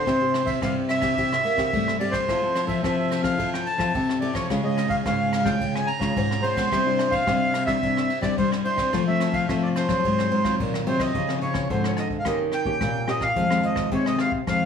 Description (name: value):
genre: samba and choro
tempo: 108 BPM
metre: 4/4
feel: straight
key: unclear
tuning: A4 = 440 Hz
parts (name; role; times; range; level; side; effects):
- accordion; melody; 0.0-14.7 s; C5 to Bb5; -25 LUFS; right 1 dB; none
- nylon-string guitar; accompaniment; 0.0-14.7 s; F2 to A4; -26 LUFS; left 3 dB; none
- nylon-string guitar; bass; 0.0-14.7 s; Ab2 to Bb3; -27 LUFS; equal; none
- jazz brush drum kit; drums; 0.1-14.6 s; hi-hat, kick drum, ride cymbal, rim click; -30 LUFS; right 1 dB; none
room: moderate large studio reverb, RT60 0.9 s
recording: small room ambience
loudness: -21 LUFS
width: side -7 dB against mid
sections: 0.0-11.2 A section; 11.2-14.7 B section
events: none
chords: 0.1 C; 2.3 Fmaj7; 4.5 Db; 6.7 Cadd9; 8.9 F; 10.0 Ab13; 11.2 Dbmaj9; 12.3 Eb7; 13.4 Fm7